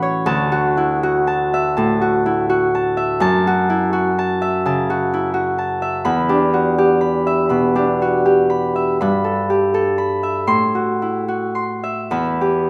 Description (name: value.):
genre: classical, solo harp piece.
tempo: 68-86 BPM.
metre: 4/4.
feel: rubato.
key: E dorian.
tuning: A4 = 441 Hz.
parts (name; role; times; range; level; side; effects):
Celtic harp; solo; 0.0-12.7 s; D2 to C6; -18 LUFS; equal; none.
room: wet recital hall reverb, RT60 1.4 s.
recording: none.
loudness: -18 LUFS.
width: mono.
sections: 0.0-12.7 A section.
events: none.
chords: 0.3 Dadd9; 3.2 F#m7; 6.1 Em7; 9.0 G69; 10.5 Am6; 12.1 Emadd9.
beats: | 0.27 1.02 1.76 2.49 | 3.20 3.91 4.63 5.34 | 6.05 6.78 7.52 8.24 | 8.99 9.74 10.48 11.28 | 12.12.